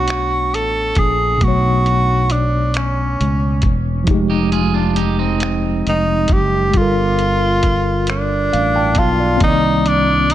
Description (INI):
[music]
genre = slow six-eight R&B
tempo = 45 BPM (dotted quarters)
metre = 6/8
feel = straight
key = unclear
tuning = A4 = 440 Hz
[part]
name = clear tenor saxophone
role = melody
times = 0.0-10.3 s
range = C#4 to A4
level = -18 LUFS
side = right 1 dB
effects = tape echo
[part]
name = tine electric piano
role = accompaniment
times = 0.0-10.3 s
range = B2 to A5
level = -20 LUFS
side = left 1 dB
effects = overdrive, medium stereo tremolo
[part]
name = fretless electric bass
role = bass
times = 0.0-10.3 s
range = E1 to C#2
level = -19 LUFS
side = equal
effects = lush chorus
[part]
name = dusty soul sampler-style drum kit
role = drums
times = 0.1-10.3 s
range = finger snaps, hi-hat, kick drum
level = -18 LUFS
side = equal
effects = none
[part]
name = electric guitar at the edge of break-up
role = second line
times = 4.3-6.5 s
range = C4 to Ab4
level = -22 LUFS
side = right 8 dB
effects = none
[sound]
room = digital ambience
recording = dark, warm production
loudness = -14 LUFS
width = side -12 dB against mid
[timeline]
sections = 0.0-9.4 A section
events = tine electric piano fill 8.1-9.4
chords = 0.0 Bm9; 4.1 Fm9; 6.7 Gm9; 9.4 Cm9